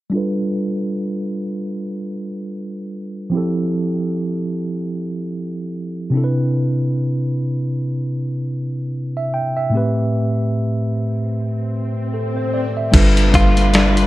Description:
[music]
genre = contemporary R&B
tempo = 75 BPM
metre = 4/4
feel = swing 58% on 16ths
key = unclear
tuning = A4 = 440 Hz
[part]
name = mellow tine electric piano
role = accompaniment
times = 0.1-14.1 s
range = A2 to G5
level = -19 LUFS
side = equal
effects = medium stereo tremolo, low-pass filter
[part]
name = swell and downlifter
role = sound effects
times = 11.6-14.1 s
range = none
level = -27 LUFS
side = left 2 dB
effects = none
[part]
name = rich studio string section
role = sustained chords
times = 12.9-14.1 s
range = G3 to B4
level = -26 LUFS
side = left 2 dB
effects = none
[part]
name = soft 808-style bass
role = bass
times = 12.9-14.1 s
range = G1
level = -15 LUFS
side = equal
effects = none
[part]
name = dusty soul sampler-style drum kit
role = drums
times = 12.9-14.1 s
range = crash cymbal, hi-hat, kick drum, snare drum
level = -15 LUFS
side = equal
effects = none
[part]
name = direct-recorded clean electric guitar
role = melody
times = 13.4-14.1 s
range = F4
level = -20 LUFS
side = left 1 dB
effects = none
[part]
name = celesta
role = texture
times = 13.7-14.1 s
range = D5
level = -28 LUFS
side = left 2 dB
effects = none
[sound]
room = digital ambience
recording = none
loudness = -18 LUFS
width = side -16 dB against mid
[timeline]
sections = 0.1-12.9 A section; 12.9-14.1 B section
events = filter sweep on tine electric piano 0.1-12.9; swell 11.6-12.9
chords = 0.1 G7; 3.3 Fmaj7; 6.1 Cmaj7; 9.7 Am7; 12.9 G7

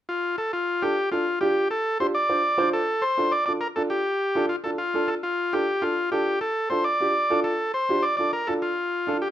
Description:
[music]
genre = latin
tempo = 204 BPM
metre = 4/4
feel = straight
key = D minor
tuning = A4 = 441 Hz
[part]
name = combo organ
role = melody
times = 0.1-9.3 s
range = F4 to D5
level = -23 LUFS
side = left 1 dB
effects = none
[part]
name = warm upright piano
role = accompaniment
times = 0.8-9.2 s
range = D4 to C5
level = -26 LUFS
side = right 2 dB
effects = none
[sound]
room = moderate studio reverb, RT60 0.7 s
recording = minimal, uncompressed stereo recording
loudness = -22 LUFS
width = side -11 dB against mid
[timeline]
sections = 0.5-9.3 A section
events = none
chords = 0.0 N.C.; 0.5 Dm

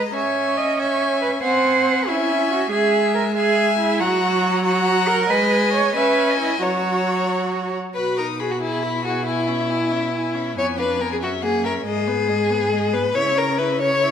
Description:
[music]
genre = quick classical-period movement for string quartet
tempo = 93 BPM (dotted quarters)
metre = 6/8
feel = straight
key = unclear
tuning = A4 = 440 Hz
[part]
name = warm violin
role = melody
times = 0.0-14.1 s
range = B4 to D#6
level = -27 LUFS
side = left 11 dB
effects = none
[part]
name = rich violin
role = second line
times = 0.0-14.1 s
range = E4 to F#5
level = -22 LUFS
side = left 2 dB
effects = none
[part]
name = clear viola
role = accompaniment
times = 0.0-14.1 s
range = F#3 to G#4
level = -25 LUFS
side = right 1 dB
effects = none
[part]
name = rich cello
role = bass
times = 0.1-14.1 s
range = F2 to D#5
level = -22 LUFS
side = right 4 dB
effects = none
[sound]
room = wet recital hall reverb, RT60 1.8 s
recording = none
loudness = -18 LUFS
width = side -8 dB against mid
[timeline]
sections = 0.0-8.0 A section; 8.0-14.1 B section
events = none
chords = 0.1 C#m; 1.4 G#7/B#; 2.1 C#m; 2.7 E/G#; 4.0 F#; 5.3 G#m; 6.0 C#m7; 6.6 F#; 8.0 B; 8.6 E/B; 9.3 C#m/B; 10.6 Fdim7; 11.2 F#7; 11.9 G#m; 13.2 C#m

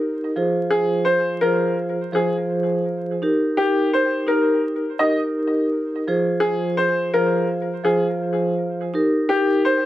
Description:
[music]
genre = hip hop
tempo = 84 BPM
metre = 4/4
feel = swing 62% on 16ths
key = F minor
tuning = A4 = 440 Hz
[part]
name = vibraphone with soft mallets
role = accompaniment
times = 0.0-9.9 s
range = F3 to C5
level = -20 LUFS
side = right 1 dB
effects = high-pass filter, low-pass filter
[part]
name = bright upright piano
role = melody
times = 0.7-9.9 s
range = G4 to Eb5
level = -21 LUFS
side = left 2 dB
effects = high-pass filter, low-pass filter, ping-pong delay
[sound]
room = moderate small room reverb, RT60 0.5 s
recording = dark, warm production, vinyl crackle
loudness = -18 LUFS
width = side -14 dB against mid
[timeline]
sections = 0.0-9.9 A section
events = none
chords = 0.3 Fm; 3.2 Eb; 6.1 Fm; 8.9 Eb

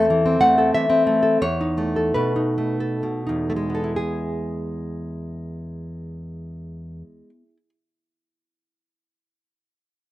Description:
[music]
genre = romantic piece for solo classical guitar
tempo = 59-99 BPM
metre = 3/4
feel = rubato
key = E major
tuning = A4 = 439 Hz
[part]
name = nylon-string guitar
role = solo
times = 0.0-7.7 s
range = E2 to F#5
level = -20 LUFS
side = equal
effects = slapback echo
[sound]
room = little or no reverb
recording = recorded outdoors, with no room sound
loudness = -19 LUFS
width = side -15 dB against mid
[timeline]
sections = 0.0-4.0 A section; 4.0-9.2 B section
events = slowing down 0.0-4.0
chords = 0.0 Am/E; 1.4 B7/E; 4.0 E

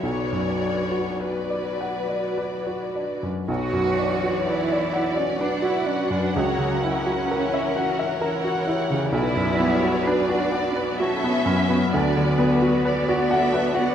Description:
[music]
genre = classical, romantic movement for piano and orchestra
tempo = 50-67 BPM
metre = 3/4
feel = rubato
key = B minor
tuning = A4 = 441 Hz
[part]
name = clear baby grand piano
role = melody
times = 0.0-13.9 s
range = B1 to F#5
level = -23 LUFS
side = left 1 dB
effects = none
[part]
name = warm studio violin section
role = melody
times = 0.0-13.9 s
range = A4 to E5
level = -32 LUFS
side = left 3 dB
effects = none
[part]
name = warm studio violin section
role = second line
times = 0.0-13.9 s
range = A4 to F#5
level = -29 LUFS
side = left 2 dB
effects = none
[part]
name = rich studio viola section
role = accompaniment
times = 0.0-13.9 s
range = E3 to G4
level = -30 LUFS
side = right 2 dB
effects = none
[part]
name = rich studio cello section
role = bass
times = 3.5-13.9 s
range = B3 to F#4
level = -27 LUFS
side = right 4 dB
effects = none
[sound]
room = moderate concert hall reverb, RT60 2.3 s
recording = minimal, uncompressed stereo recording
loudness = -20 LUFS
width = side -9 dB against mid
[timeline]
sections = 0.0-3.5 A section; 3.5-13.9 A section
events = none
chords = 0.0 Bm; 6.3 F#7/C#; 9.1 Bm; 11.9 Bm/D

